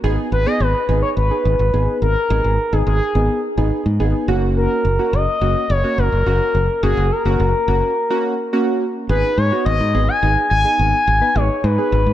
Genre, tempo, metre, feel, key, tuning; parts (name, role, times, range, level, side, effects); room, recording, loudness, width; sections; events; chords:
synth-pop; 106 BPM; 4/4; straight; G# minor; A4 = 440 Hz
warm analog keys; accompaniment; 0.0-12.0 s; A#3 to B4; -22 LUFS; right 2 dB; chorus
modern bright fingered electric bass; bass; 0.0-12.1 s; F#1 to G#2; -18 LUFS; equal
expressive synth lead; melody; 0.3-12.1 s; G#4 to G#5; -19 LUFS; left 2 dB; chorus
moderate plate reverb, RT60 3.0 s; dark, warm production; -15 LUFS; side -12 dB against mid
0.0-9.1 A section; 9.1-12.1 B section
break 8.0-9.1
0.0 G#m; 4.3 F#; 9.1 G#m